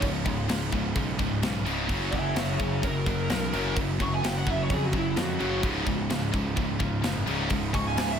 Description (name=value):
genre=heavy metal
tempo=128 BPM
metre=4/4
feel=straight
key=unclear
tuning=A4 = 440 Hz
part: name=heavy high-gain guitar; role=riff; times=0.0-8.2 s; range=C#2 to F#3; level=-32 LUFS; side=left 10 dB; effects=distortion
part: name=heavy high-gain guitar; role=riff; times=0.0-8.2 s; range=C#2 to F#3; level=-33 LUFS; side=right 6 dB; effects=distortion
part: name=overdriven electric guitar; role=riff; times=0.0-8.2 s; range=C#2 to F#3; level=-33 LUFS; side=right 1 dB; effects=none
part: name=fuzz picked electric bass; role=bass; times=0.0-8.2 s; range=C#1 to E#2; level=-32 LUFS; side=equal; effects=overdrive
part: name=tight metal drum kit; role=drums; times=0.0-8.1 s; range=crash cymbal, kick drum, snare drum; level=-31 LUFS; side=equal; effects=none
part: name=high-gain lead guitar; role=melody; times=2.1-8.2 s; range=E4 to C#6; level=-32 LUFS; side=right 1 dB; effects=distortion, digital delay
room=light reverb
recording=none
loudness=-25 LUFS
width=side -8 dB against mid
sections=0.0-8.2 A section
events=lead electric guitar solo 0.0-8.2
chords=0.0 C#5; 1.9 F#; 5.6 C#5